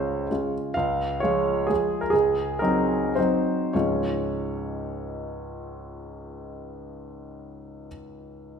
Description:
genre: classical, romantic triple-time dance for piano with dotted rhythms.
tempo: 94-138 BPM.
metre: 3/4.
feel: rubato.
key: Db major.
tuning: A4 = 439 Hz.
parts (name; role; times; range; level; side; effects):
clear grand piano; solo; 0.0-8.6 s; Db2 to F5; -24 LUFS; equal; none.
room: wet recital hall reverb, RT60 1.5 s.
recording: minimal, uncompressed stereo recording.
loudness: -22 LUFS.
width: side -6 dB against mid.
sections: 0.8-3.8 A section; 3.8-6.9 B section.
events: slowing down 0.1-3.8.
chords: 0.0 Db; 2.1 Ab7/Db; 3.8 Db.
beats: 0.30 | 0.76 1.23 1.70 | 2.15 2.62 3.17 | 3.76 4.29 4.83 | 5.34 5.88 6.42.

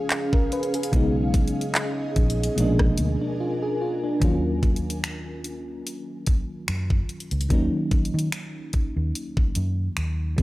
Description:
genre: contemporary R&B.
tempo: 73 BPM.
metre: 4/4.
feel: swing 54% on 16ths.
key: Eb minor.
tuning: A4 = 443 Hz.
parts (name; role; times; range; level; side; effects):
FM electric piano with auto-pan; accompaniment; 0.0-10.4 s; Cb3 to Cb5; -28 LUFS; equal; none.
ethereal airy pad; sustained chords; 0.0-4.2 s; Db4 to Ab5; -29 LUFS; right 1 dB; ensemble chorus, built-in reverb.
trap drum kit; drums; 0.1-10.4 s; finger snaps, handclaps, hi-hat, kick drum, rim click; -23 LUFS; equal; none.
vintage muted fingered electric bass; bass; 0.9-10.4 s; Bb1 to Eb3; -26 LUFS; equal; none.
room: light reverb.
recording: dry, gritty hardware recording.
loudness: -22 LUFS.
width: side -18 dB against mid.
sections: 0.0-4.2 A section; 4.2-10.4 B section.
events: break 3.4-4.2.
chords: 0.0 Db7; 0.9 B69; 2.6 Bb7b9; 4.2 Ebm9.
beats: 0.11 | 0.93 1.75 2.57 3.39 | 4.22 5.04 5.86 6.68 | 7.50 8.33 9.15 9.97.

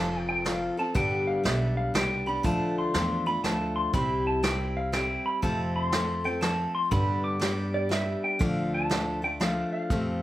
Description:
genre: honky-tonk and classic country.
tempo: 121 BPM.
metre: 3/4.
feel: swing 66% on 8ths.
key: unclear.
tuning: A4 = 438 Hz.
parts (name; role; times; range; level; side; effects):
pedal steel guitar; melody; 0.0-10.2 s; D5 to D6; -30 LUFS; equal; slapback echo.
picked steel-string acoustic guitar; accompaniment; 0.0-10.2 s; F2 to A4; -29 LUFS; left 1 dB; none.
upright bass; bass; 0.0-10.2 s; F1 to G2; -33 LUFS; right 1 dB; none.
vintage brush drum kit; drums; 0.5-10.1 s; hi-hat, kick drum, snare drum; -30 LUFS; right 1 dB; none.
room: little or no reverb.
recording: none.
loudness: -25 LUFS.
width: side -14 dB against mid.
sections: 0.0-10.2 A section.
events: none.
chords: 0.0 F; 1.0 G; 2.4 Dm; 3.9 C; 5.4 F; 6.9 G; 8.4 Dm.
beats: 0.45 | 0.95 1.45 1.95 | 2.44 2.94 3.44 | 3.94 4.43 4.93 | 5.43 5.92 6.42 | 6.92 7.41 7.91 | 8.41 8.90 9.40 | 9.90.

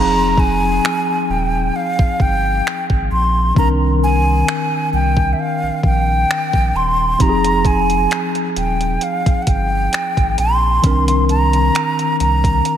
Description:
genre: contemporary R&B.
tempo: 66 BPM.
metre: 4/4.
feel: swing 54% on 16ths.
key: unclear.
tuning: A4 = 442 Hz.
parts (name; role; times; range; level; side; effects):
breathy mellow silver concert flute; melody; 0.0-12.8 s; E5 to C6; -18 LUFS; right 1 dB; analog delay.
mellow tine electric piano; accompaniment; 0.0-12.8 s; Eb3 to Bb4; -21 LUFS; left 2 dB; slow stereo tremolo.
warm sub bass; bass; 0.0-12.6 s; Eb1 to C2; -19 LUFS; equal; none.
crisp 8-bit digital drum machine; drums; 0.4-12.8 s; finger snaps, hi-hat, kick drum; -19 LUFS; equal; none.
room: moderate plate reverb, RT60 3.4 s.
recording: dreamy mix soaked in reverb.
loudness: -14 LUFS.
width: side -10 dB against mid.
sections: 0.0-12.8 A section.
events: none.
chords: 0.0 Fm7; 3.6 Cm9; 7.2 Fm7; 10.8 Cm9.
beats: 0.84 1.75 2.65 | 3.56 4.47 5.38 6.29 | 7.20 8.11 9.02 9.93 | 10.84 11.75 12.65.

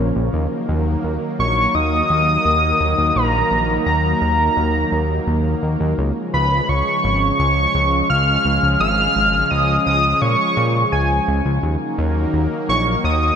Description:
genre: synthwave.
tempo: 85 BPM.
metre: 4/4.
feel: straight.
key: Eb minor.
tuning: A4 = 440 Hz.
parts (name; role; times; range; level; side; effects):
lush unison pad; sustained chords; 0.0-13.4 s; Db3 to Bb3; -22 LUFS; equal; chorus.
fat analog bass; bass; 0.0-13.3 s; Ab1 to Bb2; -20 LUFS; equal; tube saturation.
wide unison lead; melody; 1.4-13.4 s; Ab5 to F6; -18 LUFS; equal; ping-pong delay.
room: wet lush hall reverb, RT60 2.6 s.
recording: bright 1980s-style digital production.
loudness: -15 LUFS.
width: side -7 dB against mid.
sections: 0.3-13.4 A section.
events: none.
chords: 0.3 Ebm; 6.0 Db; 11.6 Ebm.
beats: | 0.33 1.04 1.74 2.45 | 3.16 3.86 4.57 5.27 | 5.98 6.69 7.39 8.10 | 8.80 9.51 10.21 10.92 | 11.63 12.33 13.04.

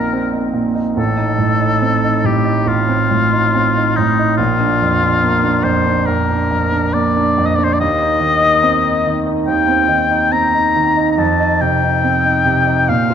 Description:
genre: classical, romantic duo for oboe and grand piano.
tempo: 71 BPM.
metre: 4/4.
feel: rubato.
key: unclear.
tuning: A4 = 440 Hz.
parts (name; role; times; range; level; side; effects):
clear oboe; melody; 0.0-13.1 s; Eb4 to Bb5; -16 LUFS; left 4 dB; none.
clear grand piano; accompaniment; 0.0-13.1 s; A1 to F4; -15 LUFS; right 2 dB; none.
room: wet scoring stage reverb, RT60 1.9 s.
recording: dark, warm production.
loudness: -12 LUFS.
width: side -8 dB against mid.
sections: 0.0-13.1 A section.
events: none.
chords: 0.0 Cm7/Bb; 1.0 F7/A; 4.4 Bb; 7.8 Cm/Eb; 11.2 F5.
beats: 0.13 | 0.98 1.83 2.68 3.54 | 4.39 5.22 6.06 6.93 | 7.81 8.65 9.48 10.32 | 11.19 12.04 12.89.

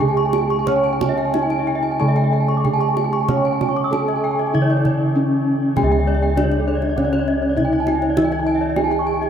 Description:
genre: Balinese gamelan.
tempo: 89-100 BPM.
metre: 4/4.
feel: straight.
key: C# pelog.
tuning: A4 = 439 Hz.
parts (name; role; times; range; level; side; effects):
gamelan-type bronze metallophone; melody; 0.0-9.3 s; C#4 to C#5; -21 LUFS; right 1 dB; none.
gamelan-type bronze metallophone; accompaniment; 0.0-9.3 s; C#3 to C#4; -27 LUFS; right 1 dB; none.
gamelan-type bronze metallophone; arpeggios; 0.0-9.3 s; C#5 to D6; -24 LUFS; left 5 dB; none.
gamelan-type bossed gongs; bass; 0.0-9.3 s; C#2 to C#5; -22 LUFS; equal; none.
kendang; percussion; 0.0-9.3 s; none; -28 LUFS; right 5 dB; none.
gamelan-type bronze metallophone; arpeggios; 0.1-9.2 s; A4-40c to E6-50c; -25 LUFS; right 4 dB; none.
room: wet cathedral reverb, RT60 7.1 s.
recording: in a vast, echoing space.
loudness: -16 LUFS.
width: side -8 dB against mid.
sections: 0.0-5.8 A section; 5.8-9.3 B section.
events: none.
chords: none.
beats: 0.00 | 0.67 1.34 2.00 2.65 | 3.29 3.92 4.55 5.16 | 5.77 6.37 6.97 7.57 | 8.18 8.78.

